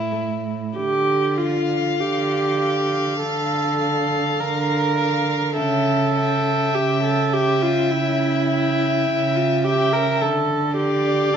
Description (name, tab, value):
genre	classical, slow romantic movement for string quartet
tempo	45-54 BPM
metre	4/4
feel	rubato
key	D minor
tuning	A4 = 440 Hz
part	rich violin	second line	0.0-11.4 s	E4 to F5	-26 LUFS	left 4 dB	none
part	warm cello	bass	0.0-11.4 s	A2 to D3	-23 LUFS	right 3 dB	none
part	warm viola	accompaniment	0.1-11.4 s	A3 to Bb4	-21 LUFS	right 1 dB	none
part	warm violin	melody	1.4-11.4 s	F5 to G5	-30 LUFS	left 4 dB	none
room	wet stone room reverb, RT60 1.1 s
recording	nothing above 7.6 kHz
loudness	-18 LUFS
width	side -8 dB against mid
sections	0.8-11.4 A section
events	none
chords	0.0 A5; 0.8 Dm; 5.6 A7/C#; 10.2 Dm